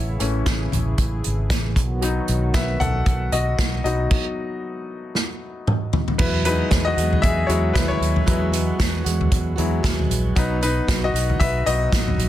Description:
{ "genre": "piano-driven pop", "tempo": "115 BPM", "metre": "4/4", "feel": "swing 56% on 16ths", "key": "E major", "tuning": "A4 = 440 Hz", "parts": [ { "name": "clear concert grand piano", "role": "accompaniment", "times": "0.0-12.3 s", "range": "E3 to F#5", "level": "-24 LUFS", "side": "left 4 dB", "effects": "none" }, { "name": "warm analog pad", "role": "sustained chords", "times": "0.0-4.1 s", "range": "C#3 to G#4", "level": "-31 LUFS", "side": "right 2 dB", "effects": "chorus" }, { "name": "vintage muted fingered electric bass", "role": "bass", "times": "0.0-12.3 s", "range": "G#1 to E2", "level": "-23 LUFS", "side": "equal", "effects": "none" }, { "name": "unplugged drum kit", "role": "drums", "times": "0.2-12.3 s", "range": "crash cymbal, hi-hat, kick drum, snare drum, toms", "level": "-22 LUFS", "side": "equal", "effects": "none" }, { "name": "fingerpicked plugged-in steel-string acoustic guitar", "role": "riff", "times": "6.2-12.3 s", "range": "E2 to F#4", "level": "-28 LUFS", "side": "right 6 dB", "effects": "none" } ], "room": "light reverb, studio ambience", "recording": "dense, heavily limited modern master", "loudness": "-18 LUFS", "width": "side -13 dB against mid", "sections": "0.0-6.2 A section; 6.2-12.3 B section", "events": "grand piano solo 0.0-6.2, 6.2-12.3; stop 4.1-6.2; drum fill 5.2-6.2", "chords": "0.0 A; 1.8 B; 6.2 Eadd9; 10.4 B", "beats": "0.47 0.99 1.51 | 2.03 2.55 3.07 3.59 | 4.11 4.63 5.15 5.67 | 6.19 6.71 7.24 7.76 | 8.28 8.80 9.32 9.84 | 10.36 10.88 11.40 11.92" }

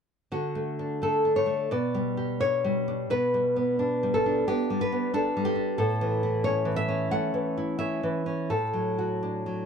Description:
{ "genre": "romantic piece for solo classical guitar", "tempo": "88 BPM", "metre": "4/4", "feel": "uneven beats, rubato", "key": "D major", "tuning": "A4 = 440 Hz", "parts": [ { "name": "nylon-string guitar", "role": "solo", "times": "0.3-9.7 s", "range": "A2 to F#5", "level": "-24 LUFS", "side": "equal", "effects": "none" } ], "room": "light reverb", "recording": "none", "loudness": "-24 LUFS", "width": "side -6 dB against mid", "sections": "0.3-9.7 A section", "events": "none", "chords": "0.3 D; 1.7 G/B; 5.8 A; 8.5 D/A", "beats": "| 0.32 1.03 1.72 2.41 | 3.09 3.78 4.46 5.13 | 5.80 6.45 7.11 7.79 | 8.50 9.22" }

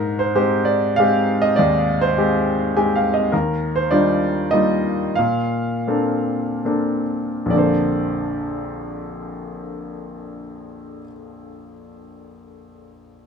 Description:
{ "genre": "classical, lyrical solo piano", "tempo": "66-107 BPM", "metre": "3/4", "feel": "rubato", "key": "Bb major", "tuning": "A4 = 440 Hz", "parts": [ { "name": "bright grand piano", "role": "solo", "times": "0.0-13.3 s", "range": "Bb1 to Ab5", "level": "-18 LUFS", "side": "equal", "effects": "none" } ], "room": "light reverb", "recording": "close, detailed microphones", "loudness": "-17 LUFS", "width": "side -6 dB against mid", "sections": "0.0-7.5 A section; 7.5-12.6 B section", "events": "grand piano fill 2.5-3.3; slowing down 3.3-7.5", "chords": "0.0 Abmaj7; 3.3 Ebmaj9; 5.2 Bbmaj9", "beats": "0.34 0.97 | 1.58 2.18 2.76 | 3.33 3.91 4.52 | 5.17 5.87 6.65 | 7.51 8.40 9.24 | 10.07 10.89 11.75" }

